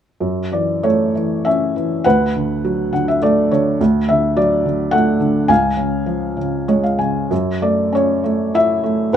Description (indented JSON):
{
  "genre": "classical, lyrical solo piano",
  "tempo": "94-108 BPM",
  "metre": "3/4",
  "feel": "rubato",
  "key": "F# minor",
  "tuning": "A4 = 440 Hz",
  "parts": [
    { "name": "felt-muted upright piano", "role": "solo", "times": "0.2-9.2 s", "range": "C#2 to G#5", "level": "-14 LUFS", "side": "equal", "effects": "none" }
  ],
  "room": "light reverb",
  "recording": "none",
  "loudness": "-15 LUFS",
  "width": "side -9 dB against mid",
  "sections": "0.2-9.2 A section",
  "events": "felt piano fill 2.6-3.8, 6.4-7.3",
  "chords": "0.2 F#m7; 2.0 D6; 3.8 Dadd9; 5.5 C#; 7.3 F#m7"
}